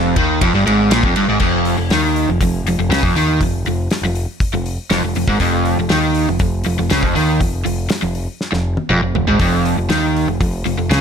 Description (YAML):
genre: classic rock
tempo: 120 BPM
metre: 4/4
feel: straight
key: F minor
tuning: A4 = 438 Hz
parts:
  - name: overdriven electric guitar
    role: riff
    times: 0.0-11.0 s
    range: F2 to Eb3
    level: -16 LUFS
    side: right 1 dB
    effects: none
  - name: growling picked electric bass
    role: bass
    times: 0.0-11.0 s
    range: F1 to Eb2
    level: -20 LUFS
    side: equal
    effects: overdrive
  - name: damped 70s drum kit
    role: drums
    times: 0.2-11.0 s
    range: crash cymbal, hi-hat, kick drum, ride cymbal, snare drum, toms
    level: -21 LUFS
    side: equal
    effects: none
room: light reverb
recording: none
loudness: -14 LUFS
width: side -7 dB against mid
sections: 0.0-1.4 A section; 1.4-11.0 B section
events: drum fill 8.4-9.4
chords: 0.0 Fm; 1.4 N.C.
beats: 0.41 0.90 | 1.40 1.90 2.40 2.90 | 3.40 3.90 4.40 4.90 | 5.40 5.90 6.40 6.90 | 7.40 7.90 8.40 8.90 | 9.40 9.90 10.40 10.90